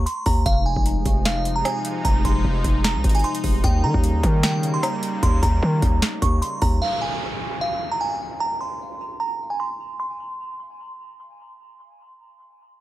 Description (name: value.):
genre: hip hop, trap.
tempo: 151 BPM.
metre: 4/4.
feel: half-time.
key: unclear.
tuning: A4 = 436 Hz.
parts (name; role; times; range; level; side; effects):
glassy synth bell; melody; 0.0-11.1 s; F5 to Db6; -26 LUFS; right 2 dB; chorus, tremolo, low-pass filter, dub echo.
hard-hitting 808-style bass; bass; 0.0-6.8 s; F1 to Eb3; -22 LUFS; equal; none.
booming analog drum machine; drums; 0.1-6.8 s; hi-hat, kick drum, rim click, snare drum; -21 LUFS; equal; overdrive.
sweeping resonant pad; sustained chords; 0.5-6.8 s; C3 to Eb4; -28 LUFS; equal; chorus.
downlifter; sound effects; 6.8-10.0 s; none; -32 LUFS; right 1 dB; none.
room: digital ambience.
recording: echo-heavy mix.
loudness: -19 LUFS.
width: side -15 dB against mid.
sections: 0.0-6.8 A section; 6.8-10.0 B section; 10.0-12.8 C section.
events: filter sweep on synth bell 6.8-10.0.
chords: 0.5 Fm7; 3.6 Eb7; 6.8 N.C..